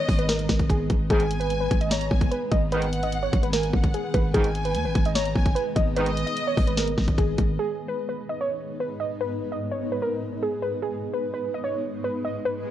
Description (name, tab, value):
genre	hip hop, trap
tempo	148 BPM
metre	4/4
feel	half-time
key	G# minor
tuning	A4 = 441 Hz
part	warbly dusty pluck	melody	0.0-12.7 s	G#4 to D#5	-28 LUFS	equal	chorus
part	warm studio violin section	second line	0.0-7.1 s	D#5 to A#5	-34 LUFS	left 1 dB	tape echo
part	granular cloud pad	sustained chords	0.0-12.7 s	G#2 to D#4	-32 LUFS	equal	built-in reverb
part	growling 808-style bass	bass	0.1-7.6 s	G#1 to D#2	-27 LUFS	equal	none
part	trap drum kit	drums	0.1-7.5 s	hi-hat, kick drum, snare drum	-24 LUFS	equal	vintage 12-bit sampler grit
part	warm brass ensemble	stabs	1.1-6.1 s	G#2 to D#3	-32 LUFS	right 3 dB	none
part	swell	sound effects	12.6-12.7 s	none	-37 LUFS	right 5 dB	none
room	little or no reverb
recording	worn, warbling old tape, cassette tape, warbly pitch drift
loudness	-22 LUFS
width	side -12 dB against mid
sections	0.0-7.6 A section; 7.6-12.7 B section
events	swell 12.6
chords	0.0 G#m